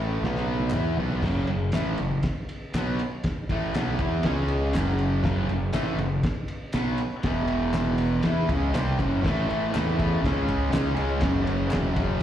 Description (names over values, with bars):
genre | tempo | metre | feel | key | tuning
garage rock duo or trio | 120 BPM | 4/4 | straight | F# minor | A4 = 438 Hz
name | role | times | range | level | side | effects
fuzz guitar | riff | 0.0-12.2 s | E2 to E4 | -26 LUFS | equal | distortion
fuzz fingered electric bass | bass | 0.0-12.2 s | E1 to E2 | -28 LUFS | equal | overdrive, tube saturation
cloth-damped thuddy drum kit | drums | 0.2-12.2 s | crash cymbal, kick drum, ride cymbal, snare drum, toms | -30 LUFS | equal | none
group handclap | percussion | 0.7-11.8 s | none | -45 LUFS | left 1 dB | slapback echo
room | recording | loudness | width
light reverb, studio reverb | live gig heard through the venue's PA, club reverb | -23 LUFS | side -11 dB against mid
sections
0.0-1.2 A section; 1.2-9.2 B section; 9.2-12.2 C section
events
drum fill 0.2-1.2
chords
0.2 B5; 0.7 Bsus4; 1.2 F#m; 4.2 C#5; 4.7 F#m; 7.2 E5; 8.2 F#5; 9.2 A5; 10.2 C#5; 11.2 F#5